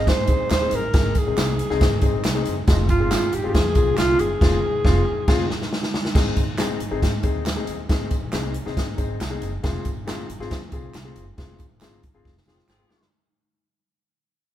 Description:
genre	uptempo 1960s-style soul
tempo	138 BPM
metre	4/4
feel	straight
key	Ab major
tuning	A4 = 440 Hz
part	breathy alto saxophone	melody	0.0-5.7 s	Eb4 to Eb5	-23 LUFS	right 1 dB	none
part	warm grand piano	accompaniment	0.0-13.0 s	C4 to Ab4	-28 LUFS	left 6 dB	none
part	upright bass	bass	0.0-13.1 s	F1 to Ab2	-27 LUFS	right 1 dB	none
part	swinging big-band drum kit	drums	0.1-13.1 s	crash cymbal, hi-hat, kick drum, snare drum	-22 LUFS	equal	none
part	tambourine and handclaps	percussion	0.1-13.0 s	none	-37 LUFS	right 3 dB	none
part	warm horn section	second line	12.5-13.1 s	F3 to Ab4	-71 LUFS	left 1 dB	none
room	moderate large studio reverb, RT60 1.3 s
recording	band playing live in one room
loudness	-19 LUFS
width	side -12 dB against mid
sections	0.0-6.2 A section; 6.2-13.1 B section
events	band accent 4.4-6.2, 11.4-13.1; drum fill 5.3-6.2, 12.2-13.1; fade-out 6.2-13.1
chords	0.0 Ab; 2.7 Fm; 6.2 Ab; 9.6 Fm

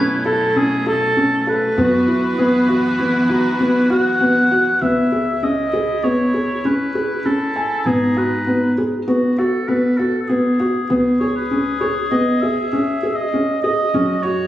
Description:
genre	contemporary instrumental, chamber music in an uneven meter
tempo	98 BPM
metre	5/4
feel	straight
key	unclear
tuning	A4 = 441 Hz
part	warm oboe	melody	0.0-14.5 s	G#4 to F#5	-21 LUFS	right 1 dB	none
part	clear clarinet	second line	0.0-14.5 s	D#4 to B4	-27 LUFS	left 1 dB	none
part	rich studio string section	sustained chords	0.0-4.8 s	B2 to F#4	-25 LUFS	equal	none
part	felt-muted upright piano	arpeggios	0.0-14.5 s	B3 to G#5	-17 LUFS	equal	none
part	upright bass	bass	0.0-14.5 s	G#1 to F#2	-31 LUFS	right 1 dB	none
part	glockenspiel with hard plastic mallets	texture	0.0-2.0 s	G#6	-31 LUFS	left 1 dB	none
room	wet concert hall reverb, RT60 1.8 s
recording	recorded on a phone in the room, studio reverb, compression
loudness	-15 LUFS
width	side -13 dB against mid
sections	0.0-4.8 A section; 4.8-14.5 B section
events	none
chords	0.0 Aadd9/F#; 1.8 Esus2/F#; 4.8 C#m7; 7.9 G#m7; 10.9 C#m7; 13.9 F#5

